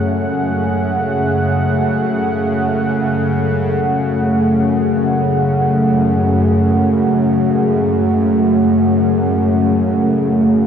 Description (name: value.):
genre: dark ambient drone.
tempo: free time.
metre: none.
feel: none.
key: F# minor.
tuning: A4 = 440 Hz.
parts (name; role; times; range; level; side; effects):
deep dark ambient pad; sustained chords; 0.0-10.7 s; A3 to F#5; -15 LUFS; equal; chorus, built-in reverb.
bowed-like drone; drone; 0.0-10.7 s; F#2 to C#3; -17 LUFS; equal; built-in reverb.
room: wet huge ambient reverb, RT60 8.2 s.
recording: dark, warm production.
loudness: -13 LUFS.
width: side -8 dB against mid.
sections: 0.0-3.8 A section; 3.8-10.7 B section.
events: filter sweep on synth drone 0.0-3.8.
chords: 0.0 F#madd9.